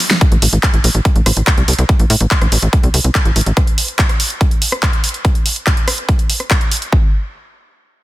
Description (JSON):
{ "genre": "psychedelic trance", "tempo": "143 BPM", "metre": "4/4", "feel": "straight", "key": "A phrygian", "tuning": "A4 = 440 Hz", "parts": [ { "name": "big-room dance drum kit", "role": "drums", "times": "0.0-6.9 s", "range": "handclaps, hi-hat, rim click, snare drum", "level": "-17 LUFS", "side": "equal", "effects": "overdrive, small room ambience" }, { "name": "electronic kick drum", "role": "drums", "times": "0.2-7.0 s", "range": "none", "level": "-13 LUFS", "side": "equal", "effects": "overdrive, small room ambience" }, { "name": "tight sequencer bass", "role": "bass", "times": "0.3-3.5 s", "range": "A1 to A2", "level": "-14 LUFS", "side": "equal", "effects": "none" } ], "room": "digital ambience", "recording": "dense, heavily limited modern master", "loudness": "-12 LUFS", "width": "side -17 dB against mid", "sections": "0.2-6.9 A section; 6.9-8.0 B section", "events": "break 0.0; drum fill 0.0", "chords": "none", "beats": "| 0.21 0.63 1.05 1.47 | 1.89 2.31 2.73 3.15 | 3.57 3.99 4.41 4.83 | 5.25 5.67 6.09 6.50 | 6.92" }